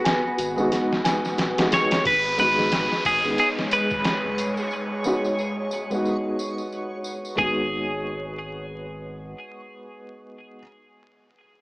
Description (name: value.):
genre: trip hop.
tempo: 90 BPM.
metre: 4/4.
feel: swing 59% on 16ths.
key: G# minor.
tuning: A4 = 440 Hz.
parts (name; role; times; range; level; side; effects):
twelve-string electric guitar; melody; 0.0-10.6 s; F#4 to C#5; -24 LUFS; equal; tape echo.
string machine, cellos; sustained chords; 0.0-7.4 s; G#3 to B4; -31 LUFS; equal; ensemble chorus.
small celesta; arpeggios; 0.0-2.1 s; F#4 to G#5; -27 LUFS; equal; vintage 12-bit sampler grit, analog delay.
trip hop sampler-style drum kit; drums; 0.1-7.6 s; hi-hat, kick drum, snare drum; -26 LUFS; equal; none.
tambourine; percussion; 0.1-7.4 s; none; -40 LUFS; equal; none.
soft dub sub bass; bass; 0.4-9.3 s; D#1 to G#1; -39 LUFS; equal; tube saturation.
felt-muted upright piano; accompaniment; 0.6-10.6 s; G#3 to G#4; -28 LUFS; equal; tremolo, low-pass filter, tape echo.
downlifter; sound effects; 2.0-7.4 s; none; -34 LUFS; equal; none.
backwards swelling texture; texture; 3.2-7.4 s; C#5; -34 LUFS; equal; built-in reverb.
room: light reverb.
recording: dry, gritty hardware recording, vinyl crackle, small speaker sound.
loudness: -21 LUFS.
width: side -24 dB against mid.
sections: 0.0-2.0 A section; 2.0-7.4 B section; 7.4-10.0 C section.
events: none.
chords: 0.0 G#m7.